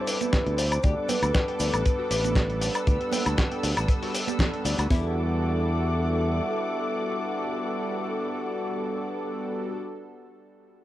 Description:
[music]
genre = nu-disco, nu disco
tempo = 118 BPM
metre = 4/4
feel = swing 54% on 16ths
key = E minor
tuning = A4 = 440 Hz
[part]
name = soft octave-layered synth lead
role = melody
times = 0.0-9.7 s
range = B4 to E5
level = -32 LUFS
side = equal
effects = chorus, cassette tape, analog delay
[part]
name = warm analog pad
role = accompaniment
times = 0.0-9.7 s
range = G3 to F#5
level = -31 LUFS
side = equal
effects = chorus, sidechain pumping, cassette tape, tape echo
[part]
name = muted studio string section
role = sustained chords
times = 0.0-9.7 s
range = C4 to E6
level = -35 LUFS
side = left 2 dB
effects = sidechain pumping, cassette tape
[part]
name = direct-recorded clean electric guitar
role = riff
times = 0.0-5.1 s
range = C4 to G5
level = -38 LUFS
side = left 11 dB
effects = analog chorus, cassette tape, tape echo
[part]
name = dusty soul sampler-style drum kit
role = drums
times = 0.1-4.9 s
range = hi-hat, shaker, snare drum, woodblock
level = -28 LUFS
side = equal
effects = none
[part]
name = maracas and congas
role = percussion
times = 0.1-4.9 s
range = none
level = -35 LUFS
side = right 13 dB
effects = none
[part]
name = tight funk drum kit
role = drums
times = 0.3-5.0 s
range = kick drum, snare drum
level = -24 LUFS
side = equal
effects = none
[part]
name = modern bright fingered electric bass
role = bass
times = 0.5-6.4 s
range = A1 to E2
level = -27 LUFS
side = equal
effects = transformer saturation
[sound]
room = light reverb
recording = home recording on cassette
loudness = -24 LUFS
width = side -14 dB against mid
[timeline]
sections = 0.0-4.9 A section; 4.9-9.0 B section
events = drop 0.0-4.9; band accent 4.4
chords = 0.0 D7sus4; 0.6 Gmaj7; 4.9 Em11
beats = 0.33 | 0.84 1.35 1.85 2.36 | 2.87 3.38 3.89 4.40 | 4.91 5.41 5.92 6.43 | 6.94 7.45 7.96 8.46

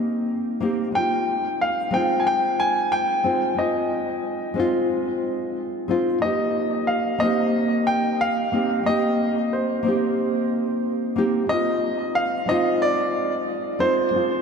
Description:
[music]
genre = chillout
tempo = 91 BPM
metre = 4/4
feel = swing 56% on 16ths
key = unclear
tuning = A4 = 440 Hz
[part]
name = warm grand piano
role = melody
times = 0.0-14.4 s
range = C5 to Ab5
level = -23 LUFS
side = equal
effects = diffuse ambient delay
[part]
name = nylon-string guitar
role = accompaniment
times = 0.0-14.4 s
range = Ab3 to G4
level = -23 LUFS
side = equal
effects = auto-pan, diffuse ambient delay
[sound]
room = wet cathedral reverb, RT60 5.1 s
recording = dreamy mix soaked in reverb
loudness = -20 LUFS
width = side -6 dB against mid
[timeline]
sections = 0.0-14.4 A section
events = none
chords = 0.0 Abmaj9 (rootless); 0.9 Ab6; 6.2 F9sus4 (rootless); 11.5 Ab6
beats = 0.29 | 0.95 1.61 2.27 2.93 | 3.59 4.25 4.91 5.56 | 6.22 6.88 7.54 8.20 | 8.86 9.52 10.18 10.84 | 11.50 12.16 12.82 13.48 | 14.14

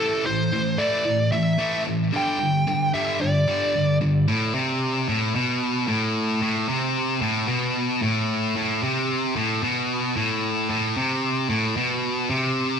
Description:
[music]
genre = rock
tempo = 112 BPM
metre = 4/4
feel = straight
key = A minor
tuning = A4 = 440 Hz
[part]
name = smooth overdriven lead guitar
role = melody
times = 0.0-4.0 s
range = A4 to G5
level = -24 LUFS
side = equal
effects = tape echo
[part]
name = high-gain distorted guitar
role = riff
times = 0.0-12.8 s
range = G2 to A3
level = -21 LUFS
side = equal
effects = distortion
[sound]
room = wet large studio reverb, RT60 1.2 s, digital ambience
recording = none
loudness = -21 LUFS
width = side -7 dB against mid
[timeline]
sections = 0.0-4.3 A section; 4.3-12.8 B section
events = none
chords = 0.0 Am; 2.1 G5; 4.3 Am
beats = 0.51 1.05 1.59 | 2.13 2.66 3.20 3.74 | 4.28 4.81 5.35 5.88 | 6.42 6.95 7.49 8.02 | 8.56 9.09 9.63 10.16 | 10.70 11.23 11.77 12.30

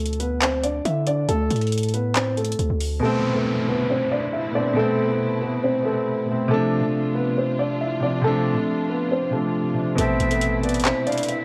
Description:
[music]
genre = hip hop, trap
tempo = 138 BPM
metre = 4/4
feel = half-time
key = A minor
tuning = A4 = 438 Hz
[part]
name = dark concert grand piano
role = melody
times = 0.0-11.4 s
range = A3 to E5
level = -26 LUFS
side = equal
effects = none
[part]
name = hard-hitting 808-style bass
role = bass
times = 0.0-3.0, 10.0-10.9 s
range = A1 to D3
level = -27 LUFS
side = equal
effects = none
[part]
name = trap drum kit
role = drums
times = 0.1-2.9, 10.0-11.4 s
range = handclaps, hi-hat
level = -29 LUFS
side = equal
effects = none
[part]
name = warm baby grand piano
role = accompaniment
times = 3.0-11.4 s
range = B2 to D4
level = -26 LUFS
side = equal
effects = none
[part]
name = dark symphonic string section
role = sustained chords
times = 3.0-11.4 s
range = C3 to B4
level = -34 LUFS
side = equal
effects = none
[part]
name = downlifter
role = sound effects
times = 3.0-6.5 s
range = none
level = -36 LUFS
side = equal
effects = none
[part]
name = bright reedy concert flute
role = second line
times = 10.0-11.4 s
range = D5 to F5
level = -30 LUFS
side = equal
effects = delay
[sound]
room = light reverb, small room ambience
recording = worn, warbling old tape, cassette tape, warbly pitch drift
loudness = -22 LUFS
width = mono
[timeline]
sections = 0.0-3.0 A section; 3.0-11.4 B section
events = break 0.0-3.0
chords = 0.0 D5; 3.0 Amadd9; 6.5 Dm7; 10.0 Amadd9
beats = 0.42 0.85 | 1.29 1.72 2.16 2.59 | 3.03 3.46 3.90 4.33 | 4.77 5.20 5.63 6.07 | 6.50 6.94 7.37 7.81 | 8.24 8.68 9.11 9.55 | 9.98 10.42 10.85 11.29

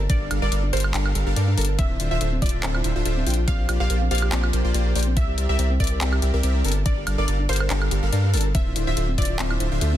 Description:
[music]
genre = future bass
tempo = 142 BPM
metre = 4/4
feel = swing 54% on 16ths, half-time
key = unclear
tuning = A4 = 440 Hz
[part]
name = soft round pluck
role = arpeggios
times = 0.0-10.0 s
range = C4 to D5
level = -32 LUFS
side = left 2 dB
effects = chorus, sidechain pumping, tape echo
[part]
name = saturated sub bass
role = bass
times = 0.0-10.0 s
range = D1 to G2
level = -22 LUFS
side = equal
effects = tube saturation, sidechain pumping
[part]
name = wide unison pluck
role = melody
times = 0.1-9.4 s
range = C5 to F5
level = -32 LUFS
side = right 1 dB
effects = phaser, sidechain pumping, dub echo
[part]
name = supersaw stab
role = riff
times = 0.1-10.0 s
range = D3 to A5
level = -28 LUFS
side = equal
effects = sidechain pumping
[part]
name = electronic kick drum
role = drums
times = 0.1-9.3 s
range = none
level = -22 LUFS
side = equal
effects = none
[part]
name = trap drum kit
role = drums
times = 0.1-9.9 s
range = handclaps, hi-hat, woodblock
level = -29 LUFS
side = left 1 dB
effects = none
[sound]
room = digital ambience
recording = dense, heavily limited modern master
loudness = -20 LUFS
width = side -12 dB against mid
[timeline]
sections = 0.0-10.0 A section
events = none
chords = 0.0 Gm7; 1.8 Dm9; 3.5 Bb69; 5.2 C7; 6.6 Gm7; 8.5 Dm9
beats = | 0.10 0.52 0.94 1.36 | 1.79 2.21 2.63 3.05 | 3.48 3.90 4.32 4.74 | 5.17 5.59 6.01 6.43 | 6.86 7.28 7.70 8.12 | 8.55 8.97 9.39 9.81

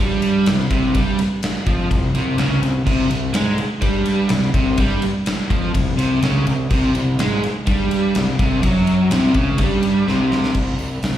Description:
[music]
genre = hard rock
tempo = 125 BPM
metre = 4/4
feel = straight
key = unclear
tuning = A4 = 440 Hz
[part]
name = crunchy overdriven guitar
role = riff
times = 0.0-10.6 s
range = C3 to Ab3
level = -21 LUFS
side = right 6 dB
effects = slapback echo
[part]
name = overdriven electric guitar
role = riff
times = 0.0-10.6 s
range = C3 to Ab3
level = -23 LUFS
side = left 8 dB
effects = slapback echo
[part]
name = fuzz fingered electric bass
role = bass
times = 0.0-11.2 s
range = C2 to Ab2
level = -22 LUFS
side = equal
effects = overdrive
[part]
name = gated 80s drum kit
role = drums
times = 0.2-11.2 s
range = crash cymbal, hi-hat, kick drum, ride cymbal, snare drum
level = -21 LUFS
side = equal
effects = none
[sound]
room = moderate club reverb, RT60 0.5 s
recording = live gig heard through the venue's PA, recital hall reverb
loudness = -16 LUFS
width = side -11 dB against mid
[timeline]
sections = 0.0-10.6 A section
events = drum fill 10.1-10.6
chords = 0.0 C5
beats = 0.47 | 0.95 1.43 1.91 2.39 | 2.87 3.35 3.83 4.31 | 4.79 5.27 5.75 6.23 | 6.71 7.19 7.67 8.15 | 8.63 9.12 9.60 10.08 | 10.56 11.04

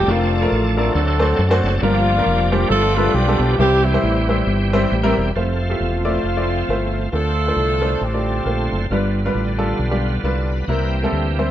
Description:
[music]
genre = gospel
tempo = 136 BPM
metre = 4/4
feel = swing 56% on 8ths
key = F major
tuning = A4 = 440 Hz
[part]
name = mellow horn section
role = melody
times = 0.0-8.9 s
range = E3 to A4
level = -21 LUFS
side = left 1 dB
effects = none
[part]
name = bright tonewheel organ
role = sustained chords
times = 0.0-11.5 s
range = D3 to B4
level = -24 LUFS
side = right 2 dB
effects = slow rotary speaker, overdrive, chorus vibrato
[part]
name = fingered electric bass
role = bass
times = 0.0-11.5 s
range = E1 to F#2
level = -20 LUFS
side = equal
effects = none
[part]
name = clear baby grand piano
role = accompaniment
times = 0.1-11.5 s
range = G2 to D5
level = -22 LUFS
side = equal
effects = none
[sound]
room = light reverb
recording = none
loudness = -16 LUFS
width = side -12 dB against mid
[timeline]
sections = 0.0-5.4 A section; 5.4-11.5 B section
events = none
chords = 0.1 Bbmaj7/F; 1.0 D7; 1.8 Gm7; 2.7 G7; 3.6 C; 5.4 Fmaj7; 7.1 Dm7; 8.9 G7; 10.7 C7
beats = | 0.07 0.51 0.95 1.39 | 1.83 2.27 2.71 3.15 | 3.59 4.03 4.47 4.91 | 5.35 5.80 6.24 6.68 | 7.13 7.57 8.02 8.46 | 8.90 9.35 9.79 10.24 | 10.68 11.13

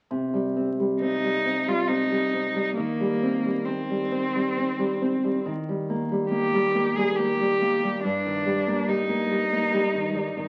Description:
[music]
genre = romantic duo for cello and classical guitar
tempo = 68 BPM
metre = 3/4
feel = uneven beats, rubato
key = C minor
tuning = A4 = 441 Hz
[part]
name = nylon-string guitar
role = accompaniment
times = 0.1-10.5 s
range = G2 to C4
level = -27 LUFS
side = equal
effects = none
[part]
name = rich cello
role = melody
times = 1.0-10.5 s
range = Bb3 to Ab4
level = -28 LUFS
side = equal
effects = none
[sound]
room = moderate large studio reverb, RT60 1.2 s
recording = very old 78 rpm record, vinyl crackle, lossy compression artefacts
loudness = -25 LUFS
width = mono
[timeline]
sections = 0.1-10.5 A section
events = none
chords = 0.1 Cm; 2.8 Cm/Eb; 5.4 Eb; 8.0 Eb/G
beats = | 0.10 1.01 1.89 | 2.77 3.65 4.55 | 5.44 6.32 7.18 | 8.04 8.88 9.73

